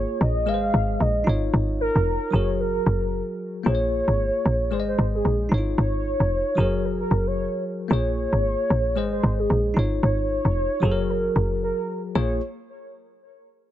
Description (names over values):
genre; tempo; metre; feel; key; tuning
afrobeats; 113 BPM; 4/4; swing 58% on 16ths; Bb minor; A4 = 435 Hz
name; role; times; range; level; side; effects
warm velvety synth lead; melody; 0.0-12.4 s; Ab4 to F5; -26 LUFS; equal; chorus
bell-like tine electric piano; accompaniment; 0.0-12.4 s; Gb3 to Eb5; -28 LUFS; left 2 dB; auto-pan
woody log drum bass; bass; 0.0-12.4 s; F1 to Bb1; -23 LUFS; equal; none
room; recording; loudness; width
digital ambience; nothing above 8.0 kHz; -21 LUFS; side -12 dB against mid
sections
0.0-3.7 A section; 3.7-12.2 B section; 12.2-13.7 C section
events
none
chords
0.5 Ab; 1.3 Dbadd9/Ab; 2.3 Gbadd9; 3.7 Bbm7; 4.7 Ab; 5.5 Dbadd9/Ab; 6.6 Gbadd9; 7.9 Bbm7; 9.0 Ab; 9.8 Dbadd9/Ab; 10.8 Gbadd9; 12.2 Bbm7